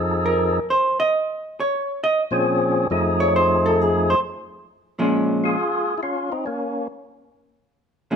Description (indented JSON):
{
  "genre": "jazz",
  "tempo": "135 BPM",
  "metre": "4/4",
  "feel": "swing 68% on 8ths",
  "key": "Bb minor",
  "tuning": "A4 = 444 Hz",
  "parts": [
    { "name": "percussive tonewheel organ", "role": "melody", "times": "0.0-6.9 s", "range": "F2 to A4", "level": "-20 LUFS", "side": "left 1 dB", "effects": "slow rotary speaker, overdrive" },
    { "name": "vintage hollow-body jazz guitar", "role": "accompaniment", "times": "0.3-8.2 s", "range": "Bb2 to Eb5", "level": "-20 LUFS", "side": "right 1 dB", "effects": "none" }
  ],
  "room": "moderate large studio reverb, RT60 1.4 s",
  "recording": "close, detailed microphones",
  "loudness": "-18 LUFS",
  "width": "side -7 dB against mid",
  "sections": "0.0-4.7 A section; 4.7-8.2 B section",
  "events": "hollow-body jazz guitar solo 0.0-4.7",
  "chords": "0.0 F7#9; 1.1 Bbm7; 2.9 F7#9; 4.7 Bbm7"
}